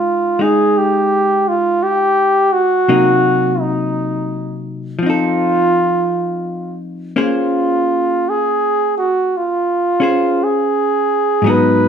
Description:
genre	jazz ballad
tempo	56 BPM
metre	4/4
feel	swing 66% on 8ths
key	F minor, Bb minor from 7.2 s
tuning	A4 = 440 Hz
part	warm flugelhorn	melody	0.0-11.9 s	Eb4 to Cb5	-14 LUFS	right 1 dB	none
part	hollow-body jazz guitar	accompaniment	0.0-11.9 s	Ab2 to C5	-18 LUFS	left 2 dB	none
room	moderate large studio reverb, RT60 0.8 s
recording	band playing live in one room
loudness	-13 LUFS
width	side -8 dB against mid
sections	0.0-7.2 A section; 7.2-11.9 B section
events	flugelhorn solo 7.2-11.9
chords	0.0 Fm9/Ab; 2.9 Cm7b5; 5.0 F7; 7.2 Bbm9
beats	0.75 1.81 | 2.87 3.93 5.00 6.09 | 7.17 8.24 9.31 10.38 | 11.44

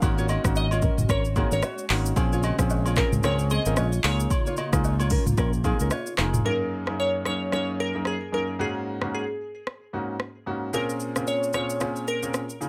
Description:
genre	afrobeats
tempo	112 BPM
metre	4/4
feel	swing 58% on 16ths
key	unclear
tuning	A4 = 445 Hz
part	glassy wavetable pluck	melody	0.0-12.7 s	Ab4 to F5	-32 LUFS	equal	chorus, tape echo
part	clear grand piano	accompaniment	0.0-12.7 s	Gb2 to Ab4	-32 LUFS	equal	none
part	hollow soft pad	sustained chords	0.0-6.4 s	Db3 to Gb4	-40 LUFS	equal	none
part	fingered electric bass	bass	0.0-6.4 s	F1 to Db2	-28 LUFS	equal	none
part	afro-pop drum kit	drums	0.0-12.7 s	handclaps, hi-hat, kick drum, rim click, shaker, toms	-29 LUFS	equal	none
part	agogo bells and woodblock	percussion	0.0-6.3 s	none	-38 LUFS	equal	none
part	nylon-string guitar	riff	0.2-6.1 s	C4 to Eb5	-35 LUFS	equal	tape echo
room	moderate studio reverb, RT60 0.5 s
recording	none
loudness	-25 LUFS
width	mono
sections	0.0-6.4 A section; 6.4-12.7 B section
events	break 6.4-12.7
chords	0.0 Gb6; 2.2 Bbm9; 4.0 Db69; 6.4 Gb6; 8.6 Ab7sus4; 10.7 Bbm9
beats	| 0.02 0.56 1.09 1.63 | 2.16 2.70 3.23 3.77 | 4.31 4.84 5.38 5.91 | 6.45 6.98 7.52 8.06 | 8.59 9.13 9.66 10.20 | 10.73 11.27 11.81 12.34

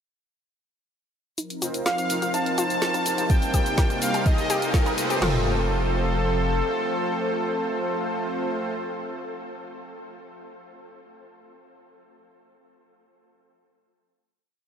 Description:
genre	progressive house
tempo	125 BPM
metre	4/4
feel	straight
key	F mixolydian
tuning	A4 = 445 Hz
part	lush unison pad	sustained chords	1.4-8.7 s	C3 to C5	-31 LUFS	left 1 dB	chorus, sidechain pumping
part	analog pluck	arpeggios	1.4-5.4 s	Eb4 to Bb4	-33 LUFS	left 1 dB	none
part	deep house drum kit	drums	1.4-5.2 s	hi-hat, shaker, snare drum	-32 LUFS	left 1 dB	none
part	riser	sound effects	3.0-5.2 s	none	-38 LUFS	right 1 dB	none
part	soft supersaw	stabs	1.6-8.7 s	A3 to C5	-30 LUFS	right 1 dB	sidechain pumping, low-pass filter, ping-pong delay
part	saturated sub bass	bass	1.6-6.6 s	F1 to C2	-30 LUFS	equal	sidechain pumping, high-pass filter
part	soft supersaw	melody	1.9-8.7 s	A4 to A5	-29 LUFS	equal	analog delay
part	soft round pluck	second line	1.9-8.7 s	A4 to A5	-38 LUFS	equal	none
part	deep house drum kit	drums	3.3-5.3 s	crash cymbal, kick drum, snare drum, toms	-22 LUFS	equal	none
room	wet huge ambient reverb, RT60 8.3 s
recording	dreamy mix soaked in reverb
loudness	-22 LUFS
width	side -8 dB against mid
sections	1.4-5.2 build; 5.2-9.1 final chord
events	build-up 1.4-5.2; filter sweep on synth arpeggio sound 1.4-5.2; filter sweep on supersaw synth 1.4-5.2; filter sweep on analog synth pad 1.4-5.2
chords	1.4 F7sus4; 3.3 Cm7; 5.2 F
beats	| 1.38 1.86 2.34 2.82 | 3.30 3.78 4.26 4.74 | 5.22 5.70 6.18 6.66 | 7.14 7.62 8.10 8.58

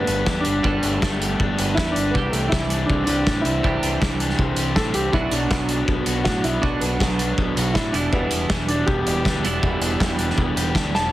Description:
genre	indie rock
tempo	160 BPM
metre	4/4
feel	straight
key	unclear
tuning	A4 = 438 Hz
part	clear upright piano	melody	0.0-11.1 s	A3 to A5	-25 LUFS	equal	none
part	crunchy overdriven guitar	riff	0.0-11.1 s	B2 to B4	-27 LUFS	left 5 dB	spring reverb
part	twelve-string electric guitar	riff	0.0-10.9 s	E2 to A4	-26 LUFS	right 4 dB	wide subtle chorus, tape echo
part	growling fingered electric bass	bass	0.0-11.1 s	E1 to A2	-26 LUFS	equal	overdrive
part	loose indie drum kit	drums	0.1-11.0 s	hi-hat, kick drum, snare drum	-24 LUFS	equal	none
room	light reverb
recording	heavily compressed radio sound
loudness	-18 LUFS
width	side -15 dB against mid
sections	0.0-11.1 A section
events	drum fill 10.9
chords	0.0 Gadd9; 2.1 Cadd9; 5.1 Bm; 7.9 Em7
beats	0.27 | 0.65 1.02 1.40 1.77 | 2.15 2.52 2.90 3.27 | 3.64 4.02 4.39 4.76 | 5.14 5.51 5.88 6.26 | 6.63 7.00 7.38 7.75 | 8.13 8.50 8.88 9.25 | 9.62 10.00 10.38 10.75

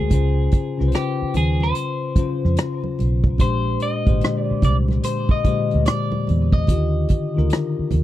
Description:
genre	R&B, neo-soul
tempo	73 BPM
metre	4/4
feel	swing 64% on 16ths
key	unclear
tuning	A4 = 436 Hz
part	electric guitar at the edge of break-up	melody	0.0-8.0 s	G4 to Eb5	-27 LUFS	left 1 dB	phaser
part	bell-like tine electric piano	accompaniment	0.0-8.0 s	Bb2 to C5	-23 LUFS	left 4 dB	none
part	vintage muted fingered electric bass	bass	0.0-8.0 s	Ab1 to F2	-20 LUFS	right 1 dB	none
part	unplugged drum kit	drums	0.1-8.0 s	hi-hat, kick drum, rim click	-19 LUFS	right 1 dB	none
part	congas	percussion	0.1-8.0 s	none	-30 LUFS	right 5 dB	none
room	small room ambience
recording	dry, close 1970s-style studio recording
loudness	-18 LUFS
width	side -14 dB against mid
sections	0.0-8.0 A section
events	none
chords	0.1 Dbmaj7; 3.4 Bb13; 6.7 Ebmaj9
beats	| 0.11 0.93 1.75 2.57 | 3.40 4.22 5.04 5.86 | 6.68 7.50

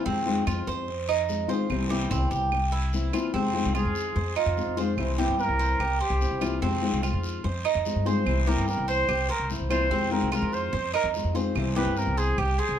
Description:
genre	latin, Cuban son and guajira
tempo	146 BPM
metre	4/4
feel	straight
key	F minor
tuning	A4 = 440 Hz
part	flamenco guitar	accompaniment	0.0-12.4 s	C3 to F4	-29 LUFS	left 5 dB	none
part	Cuban tres	arpeggios	0.0-12.8 s	C4 to C5	-30 LUFS	right 6 dB	none
part	upright bass	bass	0.1-12.8 s	C2 to G2	-28 LUFS	equal	none
part	guiro	percussion	0.1-12.8 s	none	-40 LUFS	left 4 dB	none
part	claves	percussion	0.5-12.6 s	none	-37 LUFS	right 9 dB	none
part	warm trumpet	melody	3.8-12.8 s	F4 to C5	-28 LUFS	right 1 dB	plate reverb
room	moderate studio reverb, RT60 0.5 s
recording	dark, warm production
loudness	-24 LUFS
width	side -9 dB against mid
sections	0.0-3.3 A section; 3.3-12.8 B section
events	trumpet solo 3.3-12.8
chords	0.1 Fm7; 1.7 C7; 3.3 Fm7; 5.0 C7; 6.6 Fm7; 8.3 C7; 9.9 Fm7; 11.6 C7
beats	| 0.06 0.47 0.88 1.29 | 1.70 2.11 2.52 2.93 | 3.34 3.75 4.16 4.57 | 4.98 5.39 5.80 6.21 | 6.62 7.03 7.44 7.86 | 8.27 8.68 9.09 9.50 | 9.91 10.32 10.73 11.15 | 11.56 11.97 12.38

